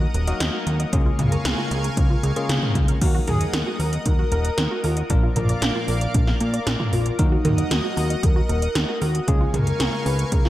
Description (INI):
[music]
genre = synthwave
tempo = 115 BPM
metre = 4/4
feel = straight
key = Eb minor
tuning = A4 = 439 Hz
[part]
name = chorused pulse-width pad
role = sustained chords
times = 0.0-10.5 s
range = Bb4 to Eb6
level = -31 LUFS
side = equal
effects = sidechain pumping
[part]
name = wide unison pluck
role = arpeggios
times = 0.0-10.5 s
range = Db4 to Eb5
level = -32 LUFS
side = right 3 dB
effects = cassette tape, tape echo
[part]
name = bell-like tine electric piano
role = stabs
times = 0.0-10.5 s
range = Bb2 to Bb4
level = -30 LUFS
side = left 3 dB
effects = tape echo
[part]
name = fat analog bass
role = bass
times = 0.0-10.5 s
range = Eb1 to Bb2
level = -23 LUFS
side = equal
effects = none
[part]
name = 80s electronic pad drums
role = drums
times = 0.1-10.5 s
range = crash cymbal, hi-hat, snare drum, toms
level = -26 LUFS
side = equal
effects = gated reverb on snare and toms, gated reverb
[part]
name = electronic kick drum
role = drums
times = 0.9-10.4 s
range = none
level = -20 LUFS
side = equal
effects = none
[part]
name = expressive synth lead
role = melody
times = 3.0-10.5 s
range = Eb4 to Cb5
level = -30 LUFS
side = equal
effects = lush chorus, cassette tape, tape echo
[part]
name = airy dreamy lead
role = second line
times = 3.0-10.5 s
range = Eb4 to Cb5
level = -35 LUFS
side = left 2 dB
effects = none
[sound]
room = light reverb, digital ambience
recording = none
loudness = -19 LUFS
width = side -14 dB against mid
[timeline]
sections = 0.0-3.0 A section; 3.0-10.5 B section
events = none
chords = 0.0 Ebm; 0.9 Db6; 3.0 Ebm; 5.1 Bb; 7.2 Ebm; 9.3 Db6